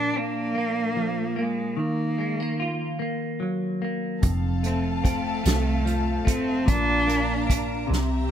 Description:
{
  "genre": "six-eight pop ballad",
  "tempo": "49 BPM (dotted quarters)",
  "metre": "6/8",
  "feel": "straight",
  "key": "unclear",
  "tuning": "A4 = 439 Hz",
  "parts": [
    { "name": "rich cello", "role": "melody", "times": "0.0-7.6 s", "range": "Ab3 to D4", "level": "-27 LUFS", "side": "equal", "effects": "none" },
    { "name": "semi-hollow electric guitar", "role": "accompaniment", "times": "0.0-8.3 s", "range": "F2 to F4", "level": "-27 LUFS", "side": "equal", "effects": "double-tracked left and right" },
    { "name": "warm studio string section", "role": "sustained chords", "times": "4.2-8.3 s", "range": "C4 to Bb5", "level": "-32 LUFS", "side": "left 2 dB", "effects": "none" },
    { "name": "vintage muted fingered electric bass", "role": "bass", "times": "4.2-8.3 s", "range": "F1 to C2", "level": "-27 LUFS", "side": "equal", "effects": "none" },
    { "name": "unplugged drum kit", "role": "drums", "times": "4.2-8.1 s", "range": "hi-hat, kick drum, snare drum", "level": "-24 LUFS", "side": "equal", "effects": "none" }
  ],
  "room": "light reverb, small room ambience",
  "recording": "none",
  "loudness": "-22 LUFS",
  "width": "side -9 dB against mid",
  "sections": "0.0-8.3 A section",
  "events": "drum fill 7.9-8.3",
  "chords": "0.0 Bb; 1.8 Ebmadd9; 4.2 F; 6.7 Bb"
}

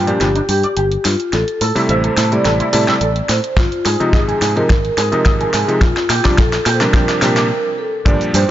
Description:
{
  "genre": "nu-disco, nu disco",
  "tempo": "107 BPM",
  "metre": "4/4",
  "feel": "straight",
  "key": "unclear",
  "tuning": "A4 = 441 Hz",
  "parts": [
    { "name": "vibraphone with soft mallets", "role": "melody", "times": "0.0-8.5 s", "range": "F4 to D5", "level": "-19 LUFS", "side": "equal", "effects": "digital delay" },
    { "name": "warm electric grand piano", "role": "accompaniment", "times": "0.0-8.5 s", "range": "Bb2 to E4", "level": "-19 LUFS", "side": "equal", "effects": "none" },
    { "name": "electric guitar with an envelope filter", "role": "riff", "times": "0.0-8.5 s", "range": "D4 to E5", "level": "-22 LUFS", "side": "right 2 dB", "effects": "lush chorus, low-pass filter" },
    { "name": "fingered electric bass", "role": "bass", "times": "0.0-8.4 s", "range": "G1 to Bb2", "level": "-20 LUFS", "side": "equal", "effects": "sidechain pumping" },
    { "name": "pop drum kit", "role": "drums", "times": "0.1-8.5 s", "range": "hi-hat, shaker, snare drum", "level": "-21 LUFS", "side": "equal", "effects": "overdrive, high-pass filter on hats, high-pass filter on perc, high-pass filter on snare, high-pass filter on room" },
    { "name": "kick drum", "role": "drums", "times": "3.6-8.2 s", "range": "none", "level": "-13 LUFS", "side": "equal", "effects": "none" }
  ],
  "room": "light reverb, small room reverb",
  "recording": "nothing above 7.6 kHz",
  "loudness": "-13 LUFS",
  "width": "side -12 dB against mid",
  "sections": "0.0-8.1 A section",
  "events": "build-up 0.0-8.1; drum fill 0.0-7.5; break 7.5-8.1",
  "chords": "0.0 Gm7; 1.3 Am7; 3.6 Ab6; 5.8 Bb"
}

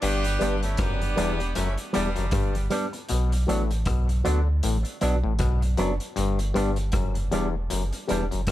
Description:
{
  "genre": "roots reggae",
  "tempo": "78 BPM",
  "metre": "4/4",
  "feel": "swing 58% on 16ths",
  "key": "unclear",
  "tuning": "A4 = 440 Hz",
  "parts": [
    { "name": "warm horn section", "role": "second line", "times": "0.0-2.7 s", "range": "G3 to G4", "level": "-30 LUFS", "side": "right 1 dB", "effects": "tape echo" },
    { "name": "clav", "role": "riff", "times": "0.0-8.5 s", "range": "E2 to D3", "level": "-31 LUFS", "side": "left 7 dB", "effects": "none" },
    { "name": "warm sub bass", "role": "bass", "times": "0.0-8.5 s", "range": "E1 to D2", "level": "-25 LUFS", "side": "equal", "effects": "none" },
    { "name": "vintage drum kit", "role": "drums", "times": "0.0-8.5 s", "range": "hi-hat, kick drum, rim click", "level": "-32 LUFS", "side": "equal", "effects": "none" },
    { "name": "electric guitar with an envelope filter", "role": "accompaniment", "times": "0.4-8.2 s", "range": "F#3 to D4", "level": "-31 LUFS", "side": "right 4 dB", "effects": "tape echo" },
    { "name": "mellow reed electric piano", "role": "stabs", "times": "0.4-8.2 s", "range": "F#4 to D5", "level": "-33 LUFS", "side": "left 4 dB", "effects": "fast tremolo" }
  ],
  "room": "studio ambience",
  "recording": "none",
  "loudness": "-23 LUFS",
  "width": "side -14 dB against mid",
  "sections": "0.0-8.5 A section",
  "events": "none",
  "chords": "0.0 G; 3.1 Bm; 6.2 G"
}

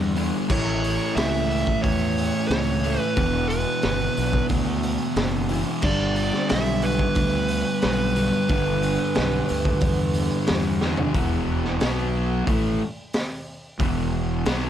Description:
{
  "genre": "stoner and doom metal",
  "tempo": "90 BPM",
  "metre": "4/4",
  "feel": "straight",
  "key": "E dorian",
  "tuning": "A4 = 440 Hz",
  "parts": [
    { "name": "fuzz guitar", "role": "riff", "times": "0.0-14.7 s", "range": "E2 to B3", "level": "-24 LUFS", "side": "equal", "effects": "distortion" },
    { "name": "fuzz fingered electric bass", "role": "bass", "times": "0.0-14.7 s", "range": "E1 to E2", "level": "-27 LUFS", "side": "equal", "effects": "overdrive" },
    { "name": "raw garage drum kit", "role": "drums", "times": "0.2-14.6 s", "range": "crash cymbal, hi-hat, kick drum, snare drum, toms", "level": "-27 LUFS", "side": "equal", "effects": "none" },
    { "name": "fuzz lead guitar", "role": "melody", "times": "0.5-10.4 s", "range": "B4 to E5", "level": "-27 LUFS", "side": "right 3 dB", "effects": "distortion, digital delay" }
  ],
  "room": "small room ambience",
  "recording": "dark, warm production",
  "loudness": "-20 LUFS",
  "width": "side -10 dB against mid",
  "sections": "0.0-11.2 A section; 11.2-14.7 B section",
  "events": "drum fill 10.8-11.2",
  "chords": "0.0 G5; 0.5 A; 3.2 E5; 5.8 G; 11.2 E5; 11.8 B5; 12.5 E5"
}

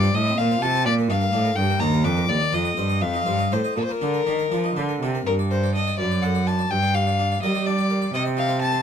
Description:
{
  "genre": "classical, baroque-style sonata movement with continuo",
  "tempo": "83 BPM (dotted quarters)",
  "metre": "6/8",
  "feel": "straight",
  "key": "Bb major, G minor from 5.3 s",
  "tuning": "A4 = 438 Hz",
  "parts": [
    { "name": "warm violin", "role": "melody", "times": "0.0-8.8 s", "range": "Bb4 to D6", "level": "-24 LUFS", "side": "left 4 dB", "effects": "none" },
    { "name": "harpsichord", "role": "accompaniment", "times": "0.0-8.8 s", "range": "Eb2 to Eb5", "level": "-26 LUFS", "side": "left 2 dB", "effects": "none" },
    { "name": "rich cello", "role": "bass", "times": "0.0-8.8 s", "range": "Eb2 to G3", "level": "-23 LUFS", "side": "right 3 dB", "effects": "none" }
  ],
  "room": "little or no reverb",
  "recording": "close, detailed microphones",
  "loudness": "-20 LUFS",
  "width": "side -8 dB against mid",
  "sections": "0.0-5.3 A section; 5.3-8.8 A section",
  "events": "none",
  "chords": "0.0 F; 0.9 Bb; 1.6 Gm; 2.3 Cm/Eb; 3.0 F7; 3.8 Bb; 5.3 Gm; 6.0 D/F#; 6.7 Gm; 8.1 Cm"
}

